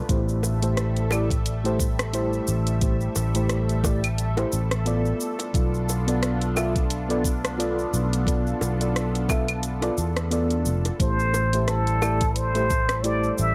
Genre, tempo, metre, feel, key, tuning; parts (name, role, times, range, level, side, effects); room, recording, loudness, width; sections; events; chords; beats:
sunset chillout; 88 BPM; 4/4; swing 56% on 16ths; A minor; A4 = 440 Hz
mellow FM electric piano; accompaniment; 0.0-13.5 s; A3 to E5; -30 LUFS; equal; chorus, tremolo, tape echo
lush unison pad; sustained chords; 0.0-13.5 s; G3 to E5; -35 LUFS; equal; chorus, phaser
sustaining fretless electric bass; bass; 0.1-13.5 s; F1 to E2; -27 LUFS; equal; subtle chorus
electronic kick drum; drums; 0.1-12.9 s; -27 LUFS; equal
smooth R&B drum kit; drums; 0.1-13.5 s; claves, hi-hat, rim click, shaker; -33 LUFS; equal
bongos; percussion; 0.4-12.2 s; -34 LUFS; equal
trumpet with plunger mute; melody; 11.0-13.5 s; A4 to E5; -27 LUFS; equal; delay
light reverb; -24 LUFS; mono
0.0-13.5 A section
0.1 Am7; 5.2 Bm7b5; 11.0 Am7
| 0.09 0.78 1.46 2.14 | 2.82 3.50 4.18 4.87 | 5.55 6.23 6.91 7.59 | 8.28 8.96 9.64 10.32 | 11.00 11.69 12.37 13.05